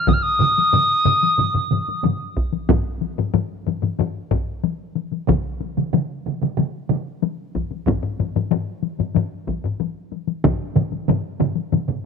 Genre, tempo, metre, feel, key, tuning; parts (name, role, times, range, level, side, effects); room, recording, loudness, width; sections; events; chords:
japanese traditional, taiko drum ensemble; 93 BPM; 4/4; straight; A4 = 440 Hz
bright piccolo; melody; 0.0-2.0 s; Eb6 to F6; -17 LUFS; equal
taiko ensemble; percussion; 0.1-11.9 s; -24 LUFS; left 13 dB
taiko ensemble; percussion; 0.1-12.0 s; -24 LUFS; left 5 dB
taiko ensemble; percussion; 0.1-12.0 s; -23 LUFS; right 11 dB
taiko ensemble; percussion; 0.1-10.6 s; -22 LUFS; right 2 dB
light reverb, studio ambience; 1960s-style stereo with parts hard left and right; -19 LUFS; side -6 dB against mid
0.0-2.7 A section; 2.7-12.1 B section